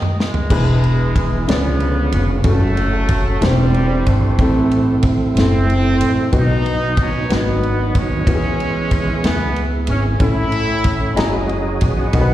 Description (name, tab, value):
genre	slow gospel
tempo	62 BPM (dotted quarters)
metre	6/8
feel	straight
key	E major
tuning	A4 = 438 Hz
part	warm horn section	melody	0.0-12.3 s	B2 to Eb5	-23 LUFS	equal	slapback echo
part	warm soul drum kit	drums	0.0-12.3 s	crash cymbal, kick drum, ride cymbal, snare drum, toms	-20 LUFS	equal	none
part	dark upright piano	accompaniment	0.5-12.3 s	A2 to A#5	-22 LUFS	left 3 dB	none
part	tonewheel organ	sustained chords	0.5-12.3 s	D3 to D#5	-23 LUFS	right 5 dB	slow rotary speaker, chorus vibrato
part	upright bass	bass	0.5-12.3 s	E1 to E2	-18 LUFS	equal	none
room	studio reverb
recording	live gig heard through the venue's PA, recital hall reverb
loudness	-14 LUFS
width	side -13 dB against mid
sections	0.5-12.3 A section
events	drum fill 0.0-0.5; stop 0.0-0.5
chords	0.0 B; 0.5 E; 1.5 C#7b9; 2.4 F#m; 3.4 C69/E; 4.4 Am; 6.3 B; 8.3 E; 10.2 A; 11.2 F#13